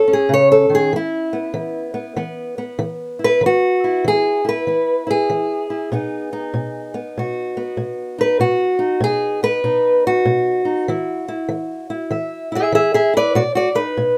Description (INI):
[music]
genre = acoustic country blues, solo or duo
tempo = 97 BPM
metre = 4/4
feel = swing 64% on 8ths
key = E major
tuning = A4 = 436 Hz
[part]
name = fingerpicked old ladder-braced acoustic guitar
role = solo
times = 0.0-14.2 s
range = A2 to E5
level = -18 LUFS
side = equal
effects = none
[sound]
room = light reverb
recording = close, detailed microphones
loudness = -19 LUFS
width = mono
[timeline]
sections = 0.0-14.2 A section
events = steel-string acoustic guitar solo 0.0-14.2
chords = 0.0 A; 0.9 E; 5.9 B; 10.9 E; 13.4 B